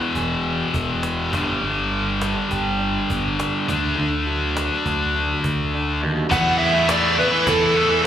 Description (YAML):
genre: quiet-loud alternative rock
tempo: 102 BPM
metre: 4/4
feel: straight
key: unclear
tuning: A4 = 442 Hz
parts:
  - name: electric guitar through a small old amp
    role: arpeggios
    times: 0.0-6.3 s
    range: E2 to G#4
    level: -31 LUFS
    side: right 6 dB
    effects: phaser, slapback echo
  - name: scooped high-gain guitar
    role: riff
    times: 0.0-8.1 s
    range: E2 to E4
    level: -21 LUFS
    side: left 4 dB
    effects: distortion, slapback echo
  - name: fuzz fingered electric bass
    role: bass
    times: 0.2-8.1 s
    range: E1 to E2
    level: -26 LUFS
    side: right 1 dB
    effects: overdrive
  - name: cajon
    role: drums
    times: 0.2-7.6 s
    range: none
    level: -29 LUFS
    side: right 1 dB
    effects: none
  - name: dark smooth lead guitar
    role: melody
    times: 6.3-8.0 s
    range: A4 to F#5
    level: -19 LUFS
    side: right 2 dB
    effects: overdrive, slapback echo, digital delay
  - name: heavy high-gain guitar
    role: riff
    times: 6.3-8.1 s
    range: E3 to E4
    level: -26 LUFS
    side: right 3 dB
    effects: distortion
  - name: tight distorted guitar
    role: riff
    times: 6.3-8.1 s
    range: E3 to E4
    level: -25 LUFS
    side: right 14 dB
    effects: distortion, slapback echo
room: light reverb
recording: live gig heard through the venue's PA, club reverb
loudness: -18 LUFS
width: side -10 dB against mid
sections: 0.0-6.3 A section; 6.3-8.1 B section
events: kick and snare drop out 5.7-6.3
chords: 0.0 E; 1.3 G; 3.7 D; 6.3 Esus4